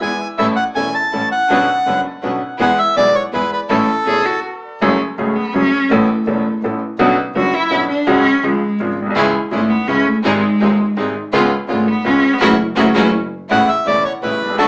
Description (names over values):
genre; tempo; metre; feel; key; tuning
tango; 165 BPM; 3/4; rubato; A major, F# minor from 4.8 s; A4 = 440 Hz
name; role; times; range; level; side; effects
bandoneon; melody; 0.0-4.4, 13.5-14.7 s; A4 to A5; -19 LUFS; equal; tape echo
bright upright piano; accompaniment; 0.0-14.7 s; D#1 to A4; -20 LUFS; equal; none
clear studio string section; stabs; 0.0-4.2, 9.2-14.7 s; A3 to B4; -24 LUFS; equal; none
rich double bass; bass; 0.0-14.7 s; E1 to E2; -29 LUFS; equal; none
rich cello; second line; 4.1-13.1 s; G#3 to G#4; -19 LUFS; equal; none
room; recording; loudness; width
wet club reverb, RT60 0.7 s; heard from further back in the room, small speaker sound; -16 LUFS; mono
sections
0.0-4.8 A section; 4.8-13.5 B section; 13.5-14.7 A section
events
stop 4.4-4.8; cello solo 4.8-13.5; band accent 12.4-13.5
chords
0.4 A; 1.5 Bmadd9; 2.6 E; 3.7 A; 4.8 F#madd9; 5.9 Aadd9; 7.0 Bmadd9; 8.1 C#sus4; 8.4 C#; 9.2 C#m; 10.2 G#; 11.3 C#7; 12.4 F#m7; 13.5 A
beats
0.01 | 0.38 0.75 1.12 | 1.49 1.86 2.23 | 2.60 2.96 3.33 | 3.70 4.07 4.44 | 4.81 5.18 5.54 | 5.90 6.26 6.63 | 6.99 7.35 7.71 | 8.07 8.43 8.79 | 9.16 9.52 9.89 | 10.25 10.61 10.97 | 11.33 11.69 12.05 | 12.41 12.77 13.13 | 13.50 13.86 14.23 | 14.59